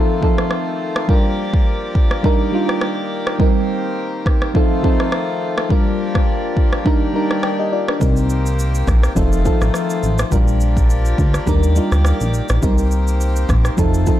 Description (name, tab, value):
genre	afrobeats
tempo	104 BPM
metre	4/4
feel	swing 55% on 16ths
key	F mixolydian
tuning	A4 = 440 Hz
part	mellow FM electric piano	accompaniment	0.0-14.2 s	F3 to G5	-20 LUFS	equal	chorus, phaser
part	hand-pumped harmonium	sustained chords	0.0-14.2 s	Eb3 to D5	-24 LUFS	left 2 dB	none
part	afro-pop drum kit	drums	0.2-14.2 s	kick drum, rim click, shaker	-18 LUFS	equal	none
part	plucky analog bass	bass	8.0-14.1 s	F1 to Eb2	-16 LUFS	equal	none
room	little or no reverb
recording	dark, warm production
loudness	-14 LUFS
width	side -12 dB against mid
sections	0.0-14.2 A section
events	break 0.0-8.0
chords	0.0 F7; 1.1 Bb6; 2.2 Ebmaj7; 3.4 Cm7; 4.5 F7; 5.7 Bb6; 6.9 Ebmaj7; 8.0 Cm7; 9.2 F7; 10.3 Bb6; 11.5 Ebmaj7; 12.6 Cm7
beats	0.51 | 1.09 1.67 2.24 2.82 | 3.40 3.97 4.55 5.13 | 5.70 6.28 6.86 7.43 | 8.01 8.59 9.16 9.74 | 10.32 10.90 11.47 12.05 | 12.63 13.20 13.78